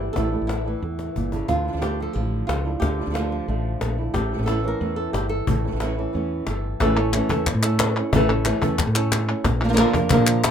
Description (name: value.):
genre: flamenco.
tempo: 181 BPM.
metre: 4/4.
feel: straight.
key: A phrygian dominant.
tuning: A4 = 440 Hz.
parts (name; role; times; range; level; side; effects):
flamenco guitar; melody; 0.0-10.5 s; A2 to Bb4; -24 LUFS; right 1 dB; none.
flamenco guitar; stabs; 0.0-10.5 s; D3 to F4; -28 LUFS; right 4 dB; none.
woody fretless electric bass; bass; 0.0-10.5 s; G1 to Bb2; -25 LUFS; equal; none.
cajon; percussion; 0.2-10.5 s; none; -26 LUFS; left 3 dB; none.
palmas hand claps; percussion; 6.8-10.5 s; none; -26 LUFS; left 2 dB; none.
room: light reverb.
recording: minimal, uncompressed stereo recording.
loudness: -20 LUFS.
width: side -8 dB against mid.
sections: 0.0-6.8 A section; 6.8-10.5 B section.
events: drum fill 1.0-1.5.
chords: 0.0 Asus4; 1.5 Dmadd9; 4.2 A; 9.4 Bb.